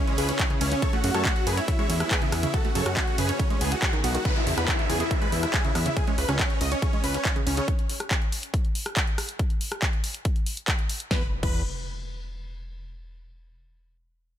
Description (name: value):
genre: uplifting trance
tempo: 140 BPM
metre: 4/4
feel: straight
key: E major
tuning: A4 = 440 Hz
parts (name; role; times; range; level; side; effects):
- big supersaw lead; melody; 0.0-7.7, 11.1-11.6 s; B3 to D#5; -30 LUFS; equal; sidechain pumping, digital delay
- supersaw pad; sustained chords; 0.0-4.2 s; C#3 to G#4; -34 LUFS; right 1 dB; vintage 12-bit sampler grit, sidechain pumping
- analog pluck; arpeggios; 0.1-7.6 s; C#3 to C#5; -33 LUFS; right 4 dB; chorus, sidechain pumping, digital delay
- punchy analog drum machine; drums; 0.1-11.5 s; crash cymbal, handclaps, hi-hat, ride cymbal, rim click, snare drum; -30 LUFS; equal; none
- fat analog bass; bass; 0.2-7.6, 11.1-11.6 s; B1 to F#2; -27 LUFS; equal; sidechain pumping
- electronic kick drum; drums; 0.4-11.5 s; none; -26 LUFS; equal; overdrive
- downlifter and impact; sound effects; 4.3-7.7, 11.1-12.8 s; none; -34 LUFS; equal; none
room: light reverb, digital ambience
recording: none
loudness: -23 LUFS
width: side -10 dB against mid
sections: 0.0-4.3 A section; 4.3-11.1 B section; 11.1-12.8 C section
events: drop 0.0-4.3; band accent 3.8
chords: 0.0 C#m; 0.8 F#m; 1.7 E6; 2.5 F#m; 3.4 C#m; 3.8 B6; 4.3 E6; 6.0 C#5; 7.7 N.C.; 11.1 E5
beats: 0.40 | 0.82 1.25 1.68 2.11 | 2.54 2.97 3.40 3.82 | 4.25 4.68 5.11 5.54 | 5.97 6.39 6.82 7.25 | 7.68 8.11 8.54 8.97 | 9.39 9.82 10.25 10.68 | 11.11 11.54 11.97 12.39